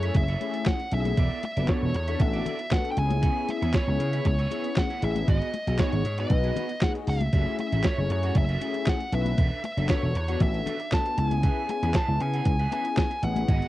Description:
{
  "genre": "early-eighties boogie funk",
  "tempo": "117 BPM",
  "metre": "4/4",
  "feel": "straight",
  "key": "unclear",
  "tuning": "A4 = 440 Hz",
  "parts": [
    { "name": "nasal lead guitar with a parked wah", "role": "melody", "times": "0.0-13.7 s", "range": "C#5 to A5", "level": "-31 LUFS", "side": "equal", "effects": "overdrive, cassette tape" },
    { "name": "mellow synth brass", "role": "accompaniment", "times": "0.0-13.5 s", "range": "A3 to B4", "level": "-32 LUFS", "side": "left 7 dB", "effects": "chorus" },
    { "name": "electric guitar at the edge of break-up", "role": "riff", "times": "0.0-13.7 s", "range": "B3 to F#5", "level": "-37 LUFS", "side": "right 8 dB", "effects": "ensemble chorus" },
    { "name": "vintage slap bass", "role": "bass", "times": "0.0-13.6 s", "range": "E1 to C#3", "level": "-26 LUFS", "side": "right 1 dB", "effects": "none" },
    { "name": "clean 12-bit digital drum machine", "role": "drums", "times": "0.0-13.7 s", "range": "handclaps, hi-hat, kick drum, snare drum", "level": "-26 LUFS", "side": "right 1 dB", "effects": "cassette tape" },
    { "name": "congas", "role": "percussion", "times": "0.2-13.5 s", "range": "none", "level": "-34 LUFS", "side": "left 6 dB", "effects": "none" }
  ],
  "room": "digital ambience",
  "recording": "home recording on cassette",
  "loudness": "-23 LUFS",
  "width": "side -15 dB against mid",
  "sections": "0.0-13.7 A section",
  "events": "none",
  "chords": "0.0 F#m7; 1.2 E7sus4; 3.0 C#m7; 5.3 G#m7; 7.3 F#m7; 9.4 E7sus4; 11.2 C#m7"
}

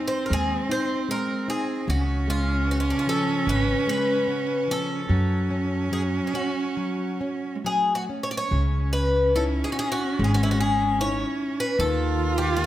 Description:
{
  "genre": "fado-style ballad",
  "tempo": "67-78 BPM",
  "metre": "4/4",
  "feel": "rubato",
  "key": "F# harmonic minor, C# minor from 8.5 s",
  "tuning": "A4 = 440 Hz",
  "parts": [
    { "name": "warm cello", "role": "second line", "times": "0.0-12.7 s", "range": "G#3 to E#4", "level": "-28 LUFS", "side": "right 3 dB", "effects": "none" },
    { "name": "nylon-string guitar", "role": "accompaniment", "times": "0.0-12.7 s", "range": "C#3 to G4", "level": "-30 LUFS", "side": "left 2 dB", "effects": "none" },
    { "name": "picked twelve-string acoustic guitar", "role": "melody", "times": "0.1-12.7 s", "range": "D4 to D5", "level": "-27 LUFS", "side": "left 2 dB", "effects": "none" },
    { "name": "upright bass", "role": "bass", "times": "0.3-12.7 s", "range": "G#1 to F#2", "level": "-25 LUFS", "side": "equal", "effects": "none" }
  ],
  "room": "moderate recital hall reverb, RT60 1.5 s",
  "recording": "none",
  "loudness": "-22 LUFS",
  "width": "side -13 dB against mid",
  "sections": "0.0-8.5 A section; 8.5-12.7 B section",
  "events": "none",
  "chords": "0.0 G#; 1.9 C#7; 5.1 F#m; 8.5 C#madd9; 11.8 D#"
}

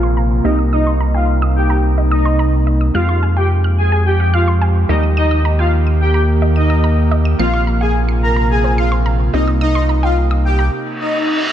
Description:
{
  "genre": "pop",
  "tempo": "108 BPM",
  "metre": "4/4",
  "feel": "straight",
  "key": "unclear",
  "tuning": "A4 = 438 Hz",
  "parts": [
    { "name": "wavetable chord stab", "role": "accompaniment", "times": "0.0-10.7 s", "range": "F3 to Bb4", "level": "-24 LUFS", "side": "equal", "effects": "low-pass filter" },
    { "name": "airy breathy pad", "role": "sustained chords", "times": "0.0-10.7 s", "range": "C3 to G4", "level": "-21 LUFS", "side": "right 1 dB", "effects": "chorus, low-pass filter" },
    { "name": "wide unison pluck", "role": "arpeggios", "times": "0.0-10.7 s", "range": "C5 to Eb7", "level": "-26 LUFS", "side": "right 2 dB", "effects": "low-pass filter, digital delay" },
    { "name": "round analog bass", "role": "bass", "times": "0.0-10.7 s", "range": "Bb1 to F2", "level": "-14 LUFS", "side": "equal", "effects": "none" },
    { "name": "soft supersaw", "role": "melody", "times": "0.4-11.4 s", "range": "Eb4 to Bb5", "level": "-19 LUFS", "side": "equal", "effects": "low-pass filter, digital delay" },
    { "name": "reverse cymbal", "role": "sound effects", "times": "10.9-11.5 s", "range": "none", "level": "-20 LUFS", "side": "right 2 dB", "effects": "none" }
  ],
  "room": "light reverb",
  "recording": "dark, warm production",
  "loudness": "-12 LUFS",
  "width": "side -10 dB against mid",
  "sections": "0.0-11.5 A section",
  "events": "filter sweep 0.0-11.5; stop 10.7-11.5; reverse cymbal 10.9-11.5",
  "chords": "0.4 Cm7; 2.9 Fmadd9; 4.9 Eb; 7.4 Bbsus2; 9.3 Cm7"
}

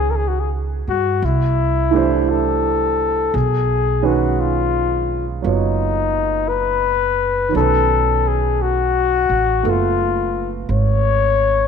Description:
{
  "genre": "jazz ballad",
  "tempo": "57 BPM",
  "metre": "4/4",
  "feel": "swing 67% on 8ths",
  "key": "unclear",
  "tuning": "A4 = 441 Hz",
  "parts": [
    { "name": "mellow flugelhorn", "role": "melody", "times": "0.0-11.7 s", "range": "D#4 to C#5", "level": "-18 LUFS", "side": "left 8 dB", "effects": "none" },
    { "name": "warm grand piano", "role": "accompaniment", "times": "0.0-11.7 s", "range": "D#3 to C#5", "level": "-23 LUFS", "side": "right 13 dB", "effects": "none" },
    { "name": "upright bass", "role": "bass", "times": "0.0-11.7 s", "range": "F#1 to G2", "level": "-20 LUFS", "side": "right 2 dB", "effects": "none" }
  ],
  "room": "moderate echo chamber reverb, RT60 2.4 s",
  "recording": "1960s-style stereo with parts hard left and right",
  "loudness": "-16 LUFS",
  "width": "side -6 dB against mid",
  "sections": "0.0-11.7 A section",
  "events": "none",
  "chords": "0.0 C#5; 1.2 C69; 3.3 Badd9; 7.5 B7#11"
}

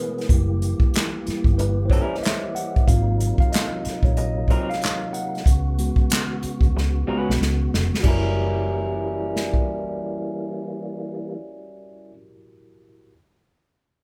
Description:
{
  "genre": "R&B, neo-soul",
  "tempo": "93 BPM",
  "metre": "4/4",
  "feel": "swing 63% on 16ths",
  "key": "unclear",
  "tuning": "A4 = 440 Hz",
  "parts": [
    { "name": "mellow tine electric piano", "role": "accompaniment", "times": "0.0-13.1 s", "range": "F#3 to F#5", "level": "-32 LUFS", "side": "equal", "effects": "none" },
    { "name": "tonewheel organ", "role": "sustained chords", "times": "0.0-11.4 s", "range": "B2 to G#4", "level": "-34 LUFS", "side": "equal", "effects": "slow rotary speaker, overdrive, chorus vibrato" },
    { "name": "unplugged drum kit", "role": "drums", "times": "0.2-9.6 s", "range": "crash cymbal, handclaps, hi-hat, kick drum, snare drum", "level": "-23 LUFS", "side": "equal", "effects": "none" },
    { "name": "vintage muted fingered electric bass", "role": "bass", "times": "0.3-12.1 s", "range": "E#1 to D2", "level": "-26 LUFS", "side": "equal", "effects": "none" },
    { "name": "electric guitar through a small old amp", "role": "second line", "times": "1.6-12.1 s", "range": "F#3 to B4", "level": "-32 LUFS", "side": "equal", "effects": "none" }
  ],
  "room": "light reverb",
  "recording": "band playing live in one room",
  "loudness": "-22 LUFS",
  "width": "mono",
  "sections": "0.0-8.0 A section; 8.0-10.6 B section",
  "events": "tine electric piano solo 0.0-8.0; drum fill 6.7-8.0",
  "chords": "0.3 F#7b9; 2.9 G#13; 5.5 C#7sus4; 8.0 F#7b9"
}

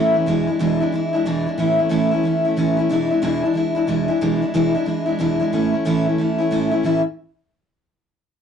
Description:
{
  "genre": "rock",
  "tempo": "183 BPM",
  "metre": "4/4",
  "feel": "swing 63% on 8ths",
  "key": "A major",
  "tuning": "A4 = 440 Hz",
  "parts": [
    { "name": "picked steel-string acoustic guitar", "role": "solo", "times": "0.0-7.0 s", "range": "E2 to E4", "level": "-17 LUFS", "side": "equal", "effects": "none" }
  ],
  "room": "moderate studio reverb, RT60 0.5 s",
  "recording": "rough rehearsal-room recording, tube saturation, nothing above 10.4 kHz",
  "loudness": "-17 LUFS",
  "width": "side -8 dB against mid",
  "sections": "0.0-6.8 A section; 6.8-8.1 B section",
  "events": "none",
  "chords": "0.3 E7; 1.6 A; 2.9 E7; 5.5 A"
}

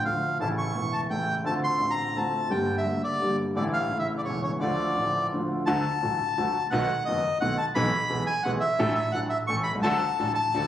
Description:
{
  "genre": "tango",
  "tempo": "172 BPM",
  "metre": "3/4",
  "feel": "rubato",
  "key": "D minor, D major from 5.7 s",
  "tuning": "A4 = 439 Hz",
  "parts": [
    { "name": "bandoneon", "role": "melody", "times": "0.0-10.7 s", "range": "C#5 to C#6", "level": "-27 LUFS", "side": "left 1 dB", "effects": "none" },
    { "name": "warm grand piano", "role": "accompaniment", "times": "0.0-10.7 s", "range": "E1 to A4", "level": "-28 LUFS", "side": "equal", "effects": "none" },
    { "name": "warm double bass", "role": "bass", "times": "0.0-10.7 s", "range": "E1 to D2", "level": "-36 LUFS", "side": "right 2 dB", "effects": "none" },
    { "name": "rich studio string section", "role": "stabs", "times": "9.8-10.7 s", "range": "D4 to A4", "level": "-36 LUFS", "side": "equal", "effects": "none" }
  ],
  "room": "wet recital hall reverb, RT60 1.4 s",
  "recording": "recorded on a phone in the room, club reverb, compression",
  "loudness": "-24 LUFS",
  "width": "side -11 dB against mid",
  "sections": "0.0-5.7 A section; 5.7-10.7 B section",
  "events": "none",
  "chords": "0.4 A; 1.5 Dm7; 2.5 Gm; 3.6 Asus4; 3.9 A; 4.6 Dm; 5.7 D; 6.7 B7; 7.8 E/B; 8.8 D/A; 9.5 A; 9.8 D"
}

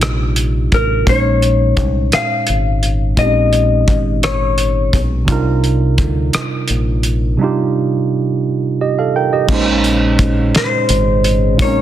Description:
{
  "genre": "slow six-eight R&B",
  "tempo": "57 BPM (dotted quarters)",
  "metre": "6/8",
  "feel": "straight",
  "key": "Bb dorian",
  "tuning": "A4 = 435 Hz",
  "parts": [
    { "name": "tine electric piano", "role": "accompaniment", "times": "0.0-11.8 s", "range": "Bb2 to G5", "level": "-17 LUFS", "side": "right 4 dB", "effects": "none" },
    { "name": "deep dub fingered electric bass", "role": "bass", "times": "0.0-11.8 s", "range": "Ab1 to D2", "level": "-17 LUFS", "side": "left 1 dB", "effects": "none" },
    { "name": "cloth-damped thuddy drum kit", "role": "drums", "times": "0.0-11.8 s", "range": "crash cymbal, hi-hat, kick drum, rim click, snare drum", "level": "-17 LUFS", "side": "equal", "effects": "soft clipping on snare" },
    { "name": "semi-hollow electric guitar", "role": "melody", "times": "0.7-5.0, 10.6-11.8 s", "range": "Bb4 to F5", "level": "-17 LUFS", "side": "left 5 dB", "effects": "slapback echo" },
    { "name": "mellow tonewheel organ", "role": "sustained chords", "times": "9.5-11.8 s", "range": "Db3 to F4", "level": "-24 LUFS", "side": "left 2 dB", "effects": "chorus vibrato, slow rotary speaker" }
  ],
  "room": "light reverb, small room ambience",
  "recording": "dense, heavily limited modern master",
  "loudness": "-12 LUFS",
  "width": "side -11 dB against mid",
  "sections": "0.0-9.5 A section; 9.5-11.8 B section",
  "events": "none",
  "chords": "0.0 Cm11; 1.1 Bbm11; 5.3 Cm11; 9.5 Bbm11"
}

